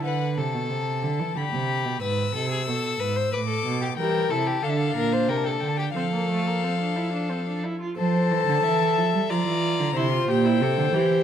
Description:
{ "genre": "classical, baroque-style fugue for string quartet", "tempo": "91 BPM", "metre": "3/4", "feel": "straight", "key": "F major from 4.0 s", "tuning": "A4 = 440 Hz", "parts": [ { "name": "rich violin", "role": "melody", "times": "0.0-11.2 s", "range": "E5 to E6", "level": "-29 LUFS", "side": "left 11 dB", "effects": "none" }, { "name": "rich violin", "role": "second line", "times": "0.0-11.2 s", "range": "G4 to E5", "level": "-28 LUFS", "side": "left 4 dB", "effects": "none" }, { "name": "rich viola", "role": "accompaniment", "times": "0.0, 4.0-11.2 s", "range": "G3 to A4", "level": "-28 LUFS", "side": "right 2 dB", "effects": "none" }, { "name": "dark cello", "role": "bass", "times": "0.0-11.2 s", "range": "G#2 to G3", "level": "-26 LUFS", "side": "right 4 dB", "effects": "none" } ], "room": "moderate concert hall reverb, RT60 2.3 s", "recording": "close, detailed microphones", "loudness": "-22 LUFS", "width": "side -9 dB against mid", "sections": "0.0-8.0 A section; 8.0-11.2 B section", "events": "none", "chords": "0.0 D7; 1.4 G; 2.0 E/G#; 3.3 Asus4; 4.0 C/E; 4.6 Dm; 5.3 C5; 6.0 F; 9.3 Bb; 10.0 C7", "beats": "| 0.05 0.71 1.37 | 2.02 2.68 3.34 | 3.99 4.64 5.29 | 5.96 6.63 7.30 | 7.97 8.64 9.30 | 9.96 10.61" }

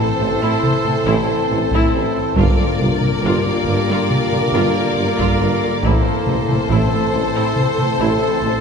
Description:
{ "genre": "cinematic, epic orchestral film score", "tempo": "69 BPM", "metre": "4/4", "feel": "straight", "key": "A phrygian", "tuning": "A4 = 440 Hz", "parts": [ { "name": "clear symphonic violin section", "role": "melody", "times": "0.0-8.6 s", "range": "C5 to D5", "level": "-25 LUFS", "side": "left 4 dB", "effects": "none" }, { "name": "warm symphonic violin section", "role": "second line", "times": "0.0-8.6 s", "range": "A4 to Bb4", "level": "-25 LUFS", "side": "left 4 dB", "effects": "none" }, { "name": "dark studio viola section", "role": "accompaniment", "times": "0.0-8.5 s", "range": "E4 to F4", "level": "-26 LUFS", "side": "equal", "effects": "none" }, { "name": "mellow French horn section", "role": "sustained chords", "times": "0.0-8.6 s", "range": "C4 to F4", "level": "-25 LUFS", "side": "left 5 dB", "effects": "none" }, { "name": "warm trombone section", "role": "sustained chords", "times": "0.0-8.6 s", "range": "D3 to C4", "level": "-26 LUFS", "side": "right 1 dB", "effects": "none" }, { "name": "warm trumpet section", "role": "stabs", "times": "0.0-8.6 s", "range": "Bb3 to A4", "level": "-23 LUFS", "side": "right 2 dB", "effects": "none" }, { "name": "rich symphonic cello section", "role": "bass", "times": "0.0-8.5 s", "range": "G2 to A2", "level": "-23 LUFS", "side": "right 2 dB", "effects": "none" }, { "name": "clear tuba", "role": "bass", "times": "0.2-8.5 s", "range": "G1 to A1", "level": "-26 LUFS", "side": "right 2 dB", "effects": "none" }, { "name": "rich symphonic double bass section", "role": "bass", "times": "0.2-8.5 s", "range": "G1 to A1", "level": "-24 LUFS", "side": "right 2 dB", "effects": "none" }, { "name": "taiko ensemble", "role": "drums", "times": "0.6-8.2 s", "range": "none", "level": "-22 LUFS", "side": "equal", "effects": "none" } ], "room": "wet concert hall reverb, RT60 1.9 s", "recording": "recorded in a church or concert hall", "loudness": "-15 LUFS", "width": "side -6 dB against mid", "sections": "0.0-8.6 A section", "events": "none", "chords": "0.0 Am; 2.4 Gm7; 5.8 Am", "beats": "0.64 1.51 | 2.37 3.24 4.10 4.97 | 5.83 6.70 7.57 8.43" }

